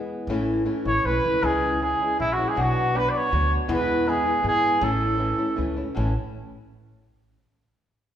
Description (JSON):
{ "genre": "mexican folk, mariachi", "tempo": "159 BPM", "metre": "3/4", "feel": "straight", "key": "A major", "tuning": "A4 = 440 Hz", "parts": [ { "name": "nylon-string guitar", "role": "accompaniment", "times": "0.0-6.1 s", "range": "E2 to F#4", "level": "-26 LUFS", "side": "left 2 dB", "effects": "none" }, { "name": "upright bass", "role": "bass", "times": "0.3-6.1 s", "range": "A1 to G#2", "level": "-28 LUFS", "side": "equal", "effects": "none" }, { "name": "mellow trumpet", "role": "melody", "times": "0.9-5.6 s", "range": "E4 to D5", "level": "-23 LUFS", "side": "right 1 dB", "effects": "none" } ], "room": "wet scoring stage reverb, RT60 1.6 s", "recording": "recorded in a church or concert hall", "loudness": "-21 LUFS", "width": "side -10 dB against mid", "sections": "0.0-1.4 A section; 1.4-6.0 B section; 6.0-7.1 C section", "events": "none", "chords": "0.3 A; 1.4 C#m; 2.6 Bm; 3.7 E; 4.8 A" }